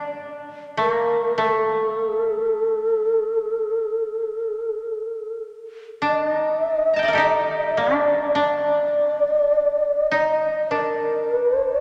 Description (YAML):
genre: japanese traditional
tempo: 52 BPM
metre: 4/4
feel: rubato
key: D miyako bushi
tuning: A4 = 440 Hz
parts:
  - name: mellow hollow long shakuhachi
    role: melody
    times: 0.0-11.8 s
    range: A4 to Eb5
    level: -23 LUFS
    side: equal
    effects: none
  - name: koto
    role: second line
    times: 0.0-11.8 s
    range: A3 to Bb5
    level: -27 LUFS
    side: equal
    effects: none
room: wet church reverb, RT60 3.9 s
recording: none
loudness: -21 LUFS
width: mono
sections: 0.0-11.8 A section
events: none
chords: none